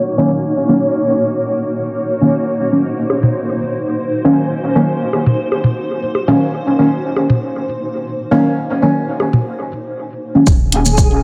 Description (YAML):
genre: dub techno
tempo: 118 BPM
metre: 4/4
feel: straight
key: Eb dorian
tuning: A4 = 440 Hz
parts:
  - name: granular cloud pad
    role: sustained chords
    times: 0.0-11.2 s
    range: Bb3 to Db5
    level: -22 LUFS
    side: equal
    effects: built-in reverb, subtle chorus, sidechain pumping
  - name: deep mellow chord stab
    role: stabs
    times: 0.2-10.9 s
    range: Eb3 to Db4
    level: -17 LUFS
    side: equal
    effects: chorus, phaser, sidechain pumping, dub echo
  - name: electronic bongos and toms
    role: percussion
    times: 3.1-9.4 s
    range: none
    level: -19 LUFS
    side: equal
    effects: sidechain pumping on perc, sidechain pumping on toms, dub echo
  - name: pure sine sub bass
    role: bass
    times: 10.5-11.2 s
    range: Eb1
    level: -19 LUFS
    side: equal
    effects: tube saturation, sidechain pumping
  - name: electronic kick drum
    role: drums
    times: 10.5-11.1 s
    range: none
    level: -14 LUFS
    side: equal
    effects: none
  - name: electronic shaker and hi-hat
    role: drums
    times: 10.5-11.1 s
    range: none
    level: -22 LUFS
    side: equal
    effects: none
  - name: flickering grainy texture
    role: texture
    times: 10.8-11.2 s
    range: Ab4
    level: -23 LUFS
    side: equal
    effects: built-in reverb, lush chorus, sidechain pumping
room: moderate plate reverb, RT60 1.9 s, digital ambience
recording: dreamy mix soaked in reverb, low-pass filter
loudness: -16 LUFS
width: mono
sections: 0.0-10.5 A section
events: filter sweep 0.0-10.5; break 9.5-10.5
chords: 0.0 Ebm7